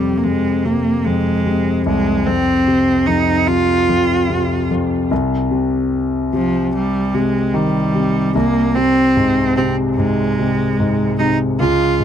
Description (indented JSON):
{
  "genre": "pop",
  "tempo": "74 BPM",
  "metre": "4/4",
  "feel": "straight",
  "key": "Ab major",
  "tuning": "A4 = 440 Hz",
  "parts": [
    { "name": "bright cello", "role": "melody", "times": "0.0-12.0 s", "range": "F3 to F4", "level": "-17 LUFS", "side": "right 3 dB", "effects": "none" },
    { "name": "warm concert grand piano", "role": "accompaniment", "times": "0.0-12.0 s", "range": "C2 to Eb3", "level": "-16 LUFS", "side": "left 2 dB", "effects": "none" }
  ],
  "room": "light reverb",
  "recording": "dry, close 1970s-style studio recording",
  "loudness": "-14 LUFS",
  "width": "side -9 dB against mid",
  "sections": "0.0-11.6 A section",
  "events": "none",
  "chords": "0.0 Fm; 5.1 Cm; 8.4 Ab/C"
}